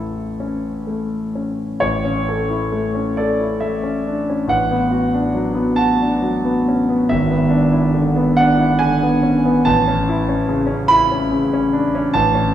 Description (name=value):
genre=classical, romantic character piece for solo piano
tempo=40-48 BPM (dotted quarters)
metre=6/8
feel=rubato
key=A major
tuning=A4 = 440 Hz
part: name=clear concert grand piano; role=solo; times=0.0-12.5 s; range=G#1 to B5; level=-15 LUFS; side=equal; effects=none
room=wet recital hall reverb, RT60 1.8 s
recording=heard from further back in the room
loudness=-15 LUFS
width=side -11 dB against mid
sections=0.0-1.8 A section; 1.8-12.5 B section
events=none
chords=0.0 A; 4.5 Bm7/A; 7.1 E7/G#; 9.6 A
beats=0.39 | 1.81 3.19 | 4.50 5.77 | 7.09 8.37 | 9.64 10.89 | 12.15